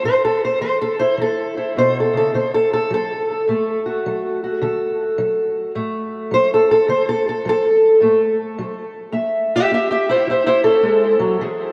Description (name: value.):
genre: acoustic country blues, solo or duo.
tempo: 106 BPM.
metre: 4/4.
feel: swing 65% on 8ths.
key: unclear.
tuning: A4 = 442 Hz.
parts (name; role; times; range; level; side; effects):
fingerpicked steel-string acoustic guitar; solo; 0.0-11.7 s; A2 to E5; -18 LUFS; equal; subtle chorus, tape echo.
room: wet lush hall reverb, RT60 3.1 s.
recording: dreamy mix soaked in reverb.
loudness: -18 LUFS.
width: mono.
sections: 0.0-11.7 A section.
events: steel-string acoustic guitar solo 0.0-11.7.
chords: 0.0 A5; 2.3 D; 9.1 A.